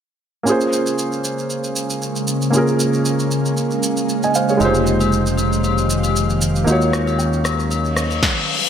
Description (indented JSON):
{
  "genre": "amapiano",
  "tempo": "116 BPM",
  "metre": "4/4",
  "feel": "swing 55% on 16ths",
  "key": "Bb minor",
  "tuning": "A4 = 439 Hz",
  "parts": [
    { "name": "dark grand piano", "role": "accompaniment", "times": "0.4-8.2 s", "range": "Ab3 to Ab5", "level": "-20 LUFS", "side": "right 2 dB", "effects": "none" },
    { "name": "ethereal airy pad", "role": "sustained chords", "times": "0.9-8.2 s", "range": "Db3 to F5", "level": "-21 LUFS", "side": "equal", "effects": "ensemble chorus, built-in reverb, phaser, sidechain pumping" },
    { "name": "deep house drum kit", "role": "drums", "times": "0.5-8.4 s", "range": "kick drum, rim click, shaker, snare drum", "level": "-24 LUFS", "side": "equal", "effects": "gated reverb" },
    { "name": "modern bright fingered electric bass", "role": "bass", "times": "4.6-8.2 s", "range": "F1 to Eb2", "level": "-20 LUFS", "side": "left 1 dB", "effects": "none" },
    { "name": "agogo bells and woodblock", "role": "percussion", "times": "4.6-8.2 s", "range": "none", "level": "-26 LUFS", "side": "left 10 dB", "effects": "none" },
    { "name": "reverse cymbal", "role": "sound effects", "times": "8.0-8.7 s", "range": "none", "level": "-21 LUFS", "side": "left 7 dB", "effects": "none" }
  ],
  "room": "wet lush hall reverb, RT60 2.2 s",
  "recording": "bright 1980s-style digital production",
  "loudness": "-16 LUFS",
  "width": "side -8 dB against mid",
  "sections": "0.5-8.7 A section",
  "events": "reverse cymbal 8.0-8.7",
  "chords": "0.5 Bbm9; 4.6 Fm9; 6.7 Ebm9"
}